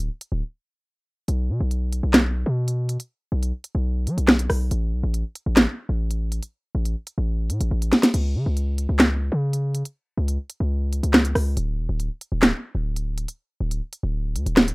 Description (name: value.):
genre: hip hop, drill.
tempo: 140 BPM.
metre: 4/4.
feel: half-time.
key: unclear.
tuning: A4 = 440 Hz.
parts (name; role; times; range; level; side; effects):
hard-hitting 808-style bass; bass; 0.0-14.7 s; D1 to F#3; -22 LUFS; equal; none.
drill drum kit; drums; 0.0-14.7 s; crash cymbal, handclaps, hi-hat, rim click, snare drum; -18 LUFS; equal; none.
room: light reverb.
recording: rough home demo mix.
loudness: -21 LUFS.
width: side -26 dB against mid.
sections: 0.0-8.1 A section; 8.1-14.7 A section.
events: break 0.4-1.3; drum fill 7.7-8.1.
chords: none.